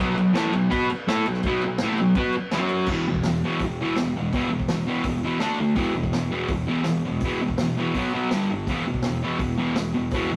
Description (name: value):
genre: garage rock duo or trio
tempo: 166 BPM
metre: 4/4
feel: straight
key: unclear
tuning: A4 = 440 Hz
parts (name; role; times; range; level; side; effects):
- fuzz guitar; riff; 0.0-10.4 s; E2 to B4; -25 LUFS; equal; distortion
- vintage drum kit; drums; 0.0-10.2 s; crash cymbal, hi-hat, kick drum, snare drum; -33 LUFS; equal; none
room: moderate stone room reverb, RT60 1.4 s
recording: rough rehearsal-room recording, tube saturation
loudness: -24 LUFS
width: mono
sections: 0.0-2.9 A section; 2.9-10.4 B section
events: none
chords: 0.0 B5; 2.5 F#5; 2.9 E5; 5.4 D5; 5.8 E5; 7.9 B5; 8.3 G5; 8.7 E5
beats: 0.35 0.71 1.07 | 1.43 1.79 2.15 2.51 | 2.87 3.23 3.60 3.96 | 4.32 4.68 5.04 5.41 | 5.77 6.13 6.49 6.86 | 7.22 7.58 7.94 8.31 | 8.67 9.03 9.40 9.76 | 10.13